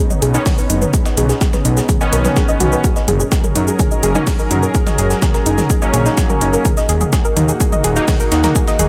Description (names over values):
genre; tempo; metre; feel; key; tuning
melodic techno; 126 BPM; 4/4; straight; unclear; A4 = 443 Hz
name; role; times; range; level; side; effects
lush unison pad; sustained chords; 0.0-8.9 s; D#3 to A#4; -25 LUFS; equal; chorus, sidechain pumping
soft round pluck; arpeggios; 0.0-8.8 s; D#4 to D#5; -22 LUFS; equal; chorus, sidechain pumping, tape echo
techno drum kit; drums; 0.1-8.9 s; hi-hat, shaker, toms; -24 LUFS; equal; overdrive, small room ambience
fat analog bass; bass; 0.2-8.9 s; D#1 to F#2; -19 LUFS; equal; tube saturation, sidechain pumping
breakbeat sampler-style drum kit; drums; 0.2-8.9 s; hi-hat, snare drum; -31 LUFS; equal; high-pass filter on hats, small room ambience, high-pass filter on snare
sync-sweep polysynth; stabs; 0.3-8.1 s; D#3 to D#4; -26 LUFS; equal; chorus, sidechain pumping, tape echo
electronic kick drum; drums; 0.5-8.7 s; none; -18 LUFS; equal; overdrive, small room ambience
room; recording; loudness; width
light reverb, digital ambience; none; -15 LUFS; mono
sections
0.0-8.9 A section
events
filter sweep on synth arpeggio sound 0.0-8.9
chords
0.0 Badd9; 2.8 F#; 6.7 D#m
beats
0.46 | 0.94 1.41 1.89 2.37 | 2.84 3.32 3.79 4.27 | 4.75 5.22 5.70 6.17 | 6.65 7.13 7.60 8.08 | 8.56